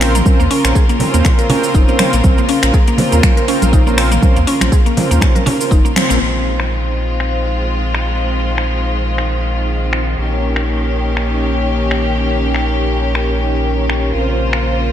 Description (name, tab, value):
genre	afro house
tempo	121 BPM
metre	4/4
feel	swing 56% on 16ths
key	Bb dorian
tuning	A4 = 440 Hz
part	clear studio string section	sustained chords	0.0-14.9 s	Db3 to C5	-20 LUFS	left 1 dB	vintage 12-bit sampler grit, sidechain pumping
part	mellow synth brass	stabs	0.0-14.9 s	C4 to Db5	-21 LUFS	right 1 dB	chorus, cassette tape, sidechain pumping, analog delay
part	warm sub bass	bass	0.0-14.9 s	F1 to Eb2	-17 LUFS	equal	tube saturation, sidechain pumping
part	deep house drum kit	drums	0.0-14.6 s	cabasa, finger snaps, hi-hat, toms	-22 LUFS	left 1 dB	overdrive, low-pass filter on perc, studio reverb, low-pass filter on hats, low-pass filter on snare, low-pass filter on toms
part	mallet-like synth pluck	arpeggios	0.1-6.2 s	Bb3 to Bb4	-20 LUFS	equal	chorus, sidechain pumping, analog delay
part	electronic kick drum	drums	0.3-5.8 s	none	-12 LUFS	equal	studio reverb
part	congas	percussion	0.3-6.1 s	none	-22 LUFS	right 2 dB	none
room	moderate church reverb, RT60 3.1 s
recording	dreamy mix soaked in reverb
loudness	-12 LUFS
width	side -10 dB against mid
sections	0.0-6.2 A section; 6.2-14.9 B section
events	band accent 6.0; filter sweep on analog polysynth 6.2-14.9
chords	0.0 Bbmadd9; 6.2 Ab6/Bb; 10.2 Eb7/Bb; 14.1 Bbmadd9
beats	| 0.26 0.76 1.25 1.75 | 2.24 2.74 3.23 3.73 | 4.23 4.72 5.22 5.71 | 6.21 6.71 7.20 7.70 | 8.19 8.69 9.19 9.68 | 10.18 10.67 11.17 11.66 | 12.16 12.66 13.15 13.65 | 14.14 14.64